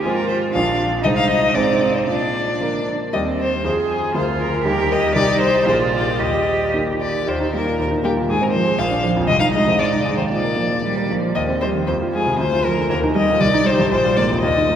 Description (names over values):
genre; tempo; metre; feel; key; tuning
quick classical-period movement for piano trio; 118 BPM; 2/4; rubato; Eb major; A4 = 441 Hz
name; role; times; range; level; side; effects
rich violin; melody; 0.0-14.8 s; G4 to F5; -20 LUFS; left 2 dB; none
warm cello; second line; 0.0-14.8 s; F3 to Ab4; -24 LUFS; right 4 dB; none
clear grand piano; accompaniment; 0.0-14.8 s; Bb1 to C5; -20 LUFS; right 1 dB; none
room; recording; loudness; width
wet cathedral reverb, RT60 4.1 s; none; -16 LUFS; side -9 dB against mid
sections
0.0-7.3 A section; 7.3-14.8 A section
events
none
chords
0.0 Fm/Ab; 0.5 Bb; 1.0 Ab/C; 1.6 Ab; 2.1 Bb; 3.1 Cm/Eb; 3.6 Fm; 4.2 Bb/D; 4.7 Eb; 5.2 Cm; 5.7 Bb7; 6.2 Eb; 8.3 Fm/Ab; 8.8 Bb; 9.3 Ab/C; 9.8 Ab5; 10.3 Bb; 11.4 Cm/Eb; 11.9 Fm; 12.4 Bb/D; 12.9 Eb; 13.4 Cm; 13.9 Bb7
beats
| 0.04 0.54 | 1.04 1.55 | 2.07 2.61 | 3.14 3.65 | 4.15 4.66 | 5.16 5.67 | 6.19 6.73 | 7.27 7.79 | 8.29 8.79 | 9.29 9.79 | 10.31 10.84 | 11.36 11.88 | 12.39 12.89 | 13.40 13.90 | 14.43